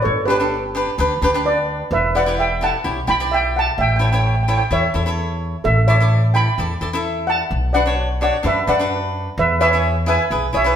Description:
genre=calypso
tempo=129 BPM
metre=4/4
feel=straight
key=unclear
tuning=A4 = 444 Hz
part: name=steel pan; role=melody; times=0.0-10.8 s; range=G4 to B5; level=-18 LUFS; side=right 1 dB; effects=none
part: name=upright bass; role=bass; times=0.1-10.8 s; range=E1 to F#2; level=-20 LUFS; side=equal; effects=none
part: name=cavaquinho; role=accompaniment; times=0.3-10.8 s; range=D4 to E5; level=-22 LUFS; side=equal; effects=none
room=wet stone room reverb, RT60 1.2 s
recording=band playing live in one room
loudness=-16 LUFS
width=side -8 dB against mid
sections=0.0-10.8 A section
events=none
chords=0.0 G; 1.9 Em; 3.8 A; 5.6 Asus4; 7.5 Bm; 9.4 E

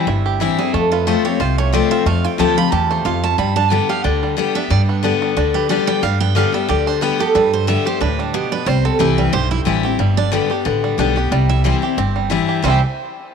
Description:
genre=bluegrass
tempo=182 BPM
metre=4/4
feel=swing 54% on 8ths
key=C major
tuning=A4 = 439 Hz
part: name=bluegrass banjo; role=melody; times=0.0-12.8 s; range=G3 to G4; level=-23 LUFS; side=right 11 dB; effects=none
part: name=picked steel-string acoustic guitar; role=melody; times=0.0-12.8 s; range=D4 to B5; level=-21 LUFS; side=right 7 dB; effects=none
part: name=picked steel-string acoustic guitar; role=accompaniment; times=0.0-12.8 s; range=E2 to G4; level=-19 LUFS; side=left 10 dB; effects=none
part: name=upright bass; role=bass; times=0.1-12.8 s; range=G1 to G2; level=-19 LUFS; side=right 1 dB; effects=none
room=light reverb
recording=1960s-style stereo with parts hard left and right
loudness=-14 LUFS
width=side -6 dB against mid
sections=0.0-10.0 A section; 10.0-12.6 B section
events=none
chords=0.0 C; 0.7 F; 3.4 G; 8.7 C; 10.0 G; 11.3 C

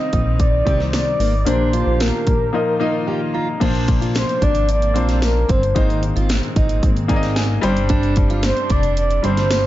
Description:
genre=piano-driven pop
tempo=112 BPM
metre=4/4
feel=straight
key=unclear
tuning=A4 = 440 Hz
part: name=mellow horn-like synth lead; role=melody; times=0.0-9.7 s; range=Bb4 to Eb5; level=-22 LUFS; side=equal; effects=chorus
part: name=clear concert grand piano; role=accompaniment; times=0.0-9.7 s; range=G2 to Bb5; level=-23 LUFS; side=left 4 dB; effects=none
part: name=dark studio string section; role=sustained chords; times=0.0-9.7 s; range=Bb2 to G4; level=-30 LUFS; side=right 2 dB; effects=stereo widening
part: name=fingerpicked steel-string acoustic guitar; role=riff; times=0.0-9.5 s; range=Bb3 to G4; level=-26 LUFS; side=right 5 dB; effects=none
part: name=chorused synth bass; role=bass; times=0.1-9.7 s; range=F1 to C2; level=-19 LUFS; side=equal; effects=none
part: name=house drum kit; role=drums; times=0.1-9.6 s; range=crash cymbal, hi-hat, kick drum, snare drum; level=-20 LUFS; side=equal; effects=none
part: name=tambourine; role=percussion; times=0.9-9.6 s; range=none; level=-36 LUFS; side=left 5 dB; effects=none
room=light reverb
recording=dark, warm production, nothing above 7.6 kHz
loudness=-15 LUFS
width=side -14 dB against mid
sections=0.0-3.6 A section; 3.6-9.7 B section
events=break 2.5-3.6; grand piano fill 2.5-3.6, 6.8-7.9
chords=0.0 Cmadd9; 1.5 Gm/Bb; 2.5 Bbsus4; 3.6 Bbadd9; 5.8 Abadd9; 7.6 Csus2/G

